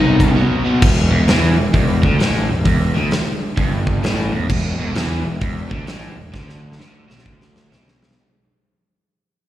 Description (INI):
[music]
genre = blues rock power trio and southern rock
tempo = 130 BPM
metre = 4/4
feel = swing 64% on 8ths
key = E minor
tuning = A4 = 440 Hz
[part]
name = crunchy overdriven guitar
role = riff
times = 0.0-8.2 s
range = E2 to B3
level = -20 LUFS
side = equal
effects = slapback echo
[part]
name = fuzz picked electric bass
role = bass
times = 0.0-8.1 s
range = E1 to E2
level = -20 LUFS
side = equal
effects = overdrive
[part]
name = big rock drum kit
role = drums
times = 0.2-8.2 s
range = crash cymbal, hi-hat, kick drum, snare drum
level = -19 LUFS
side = equal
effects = none
[sound]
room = little or no reverb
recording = live gig heard through the venue's PA, recital hall reverb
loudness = -14 LUFS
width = side -13 dB against mid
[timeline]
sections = 0.8-8.2 A section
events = break 0.4-0.8; fade-out 0.8-8.2; drum fill 6.3-8.2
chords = 0.0 B; 0.8 Em